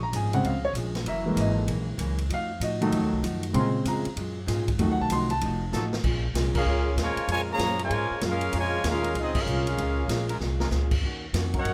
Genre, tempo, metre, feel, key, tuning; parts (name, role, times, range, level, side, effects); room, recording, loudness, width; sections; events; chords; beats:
jazz, big band swing; 193 BPM; 4/4; swing 64% on 8ths; Bb minor; A4 = 440 Hz
archtop guitar, miked and amplified; accompaniment; 0.0-11.7 s; Gb2 to Gb4; -37 LUFS; equal
warm baby grand piano; accompaniment; 0.0-5.9 s; Db3 to C6; -29 LUFS; equal
upright bass; bass; 0.0-11.7 s; F1 to Bb2; -31 LUFS; equal
swinging big-band drum kit; drums; 0.1-11.7 s; crash cymbal, hi-hat, kick drum, ride cymbal, snare drum; -36 LUFS; equal
clear trombone section; sustained chords; 1.1-3.7, 5.7-11.7 s; Gb3 to Bb4; -38 LUFS; equal
clear trumpet section; melody; 6.6-11.7 s; C4 to Bb5; -31 LUFS; equal; plate reverb
muted trombone section; second line; 6.6-11.7 s; Db3 to Gb4; -35 LUFS; equal
light reverb; -27 LUFS; mono
0.0-6.0 A section; 6.0-11.7 B section
grand piano solo 0.0-6.0; drum fill 5.7-6.0, 10.4-10.7; band accent 6.5, 9.3
0.0 Bbm7; 1.1 Gb7; 2.3 F7b9; 3.6 Bbm7; 4.8 F7b9; 6.0 Bbm7; 11.0 Ebm7
0.13 0.44 0.75 | 1.06 1.38 1.69 2.00 | 2.31 2.62 2.93 3.24 | 3.55 3.87 4.18 4.49 | 4.80 5.11 5.42 5.73 | 6.04 6.35 6.66 6.97 | 7.29 7.60 7.91 8.22 | 8.53 8.84 9.15 9.46 | 9.78 10.09 10.40 10.71 | 11.02 11.34 11.65